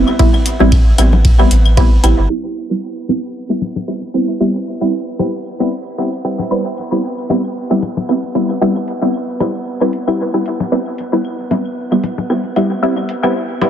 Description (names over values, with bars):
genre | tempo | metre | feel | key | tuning
dub techno | 114 BPM | 4/4 | swing 55% on 16ths | unclear | A4 = 440 Hz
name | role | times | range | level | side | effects
filtered dub chord stab | stabs | 0.0-13.7 s | G3 to E4 | -16 LUFS | equal | chorus, phaser, sidechain pumping, dub echo
soft dub sub bass | bass | 0.0-2.3 s | G1 to A1 | -12 LUFS | equal | sidechain pumping
metallic inharmonic drone | texture | 0.0-13.7 s | B3 | -27 LUFS | right 2 dB | chorus, built-in reverb, sidechain pumping
claves and congas | percussion | 0.1-13.7 s | none | -23 LUFS | left 6 dB | sidechain pumping on perc, dub echo
deep house drum kit | drums | 0.2-13.7 s | hi-hat, ride cymbal | -25 LUFS | equal | none
electronic kick drum | drums | 0.2-1.9 s | none | -13 LUFS | equal | none
room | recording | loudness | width
light reverb | low-pass filter | -13 LUFS | side -10 dB against mid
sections
0.0-2.3 A section; 2.3-13.7 B section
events
filter sweep 2.3-13.7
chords
0.0 Am9; 2.3 Gadd11